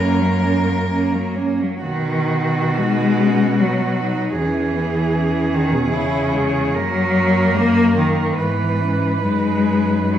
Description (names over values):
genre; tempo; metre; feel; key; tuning
classical, lyrical piece for cello ensemble; 61-79 BPM; 3/4; rubato; B major; A4 = 440 Hz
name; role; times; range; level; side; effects
warm cello; melody; 0.0-10.2 s; G#3 to A#4; -25 LUFS; left 1 dB; none
warm cello; second line; 0.0-10.2 s; A#3 to B4; -23 LUFS; right 4 dB; none
rich cello; accompaniment; 0.0-10.2 s; B2 to A#3; -19 LUFS; left 2 dB; none
rich cello; bass; 0.0-10.2 s; E2 to B2; -22 LUFS; right 1 dB; none
room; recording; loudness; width
wet stone room reverb, RT60 1.3 s; none; -16 LUFS; side -10 dB against mid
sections
0.0-1.8 A section; 1.8-10.2 B section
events
none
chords
0.0 F#; 1.8 B; 4.4 C#m/E; 6.8 F#; 8.4 E/G#; 9.2 B/F#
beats
0.89 | 1.83 2.77 3.59 | 4.37 5.14 5.91 | 6.75 7.56 8.38 | 9.24 10.13